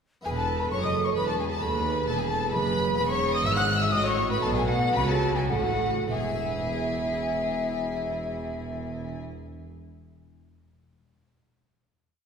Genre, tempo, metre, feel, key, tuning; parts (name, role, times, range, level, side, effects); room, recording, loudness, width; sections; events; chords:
classical, baroque-style concerto movement with solo episodes; 100-133 BPM; 3/4; straight; E major; A4 = 435 Hz
rich chamber violin section; second line; 0.2-9.2 s; F#4 to F#5; -32 LUFS; left 2 dB
harpsichord; accompaniment; 0.2-9.5 s; D#2 to E5; -37 LUFS; equal
rich chamber viola section; accompaniment; 0.2-9.2 s; E4 to B4; -34 LUFS; right 5 dB
clear studio double bass section; bass; 0.2-9.2 s; E1 to D#2; -33 LUFS; right 2 dB
mellow hollow silver concert flute; melody; 0.3-9.2 s; E5 to F#6; -30 LUFS; left 2 dB
rich chamber violin section; melody; 0.3-9.2 s; F#5 to F#6; -34 LUFS; left 4 dB
clear studio cello section; bass; 0.3-9.2 s; D#2 to C#3; -32 LUFS; right 1 dB
wet concert hall reverb, RT60 2.1 s; heard from further back in the room; -24 LUFS; side -6 dB against mid
0.3-6.1 ritornello; 6.1-9.7 final chord
slowing down 2.3-6.1
0.3 E; 1.6 B7; 3.0 E; 3.9 F#m/A; 4.4 B7; 6.1 E